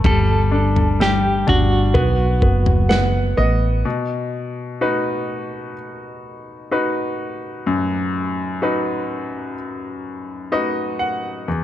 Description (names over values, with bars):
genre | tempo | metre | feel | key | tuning
pop ballad | 63 BPM | 4/4 | straight | unclear | A4 = 440 Hz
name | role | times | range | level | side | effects
clean electric guitar | melody | 0.0-2.9 s | F#4 to A4 | -22 LUFS | right 1 dB | tremolo, digital delay
bright grand piano | accompaniment | 0.0-11.6 s | E2 to F#5 | -21 LUFS | left 2 dB | none
woody fretless electric bass | bass | 0.0-3.8 s | F#1 to B1 | -18 LUFS | equal | analog chorus
modern studio drum kit | drums | 0.0-3.1 s | kick drum, snare drum, toms | -20 LUFS | equal | none
room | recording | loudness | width
light reverb, studio reverb | dark, warm production | -17 LUFS | side -12 dB against mid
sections
0.0-3.9 A section; 3.9-11.5 B section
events
grand piano fill 2.4-3.9, 10.0-11.5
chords
0.0 Gsus2; 1.9 B5; 3.9 B